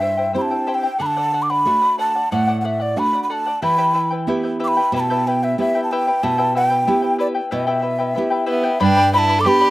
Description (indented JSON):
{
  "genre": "andean folk",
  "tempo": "92 BPM",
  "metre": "4/4",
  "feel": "straight",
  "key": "E minor",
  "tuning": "A4 = 440 Hz",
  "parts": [
    { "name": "breathy mellow quena", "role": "melody", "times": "0.0-9.7 s", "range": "D5 to D6", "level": "-18 LUFS", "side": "equal", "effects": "none" },
    { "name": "charango", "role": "accompaniment", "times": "0.0-9.7 s", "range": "E4 to B5", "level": "-24 LUFS", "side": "left 4 dB", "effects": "slapback echo" },
    { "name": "nylon-string guitar", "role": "accompaniment", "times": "0.0-9.7 s", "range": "G2 to G4", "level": "-22 LUFS", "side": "right 2 dB", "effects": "slapback echo" },
    { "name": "bright fiddle", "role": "second line", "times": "8.5-9.7 s", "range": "B3 to A4", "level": "-21 LUFS", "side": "right 2 dB", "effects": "slapback echo" }
  ],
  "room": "little or no reverb",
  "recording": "recorded outdoors, with no room sound",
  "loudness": "-16 LUFS",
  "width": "side -17 dB against mid",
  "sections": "0.0-8.8 A section",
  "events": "none",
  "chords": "0.0 C; 1.0 D; 3.6 Em; 8.8 G"
}